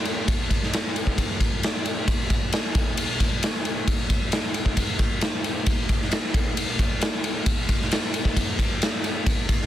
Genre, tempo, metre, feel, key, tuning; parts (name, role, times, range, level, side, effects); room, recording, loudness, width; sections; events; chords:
rock; 134 BPM; 4/4; straight
raw garage drum kit; drums; 0.1-9.7 s; kick drum, ride cymbal, snare drum; -22 LUFS; equal
light reverb; dense, heavily limited modern master; -22 LUFS; side -12 dB against mid
0.0-9.7 A section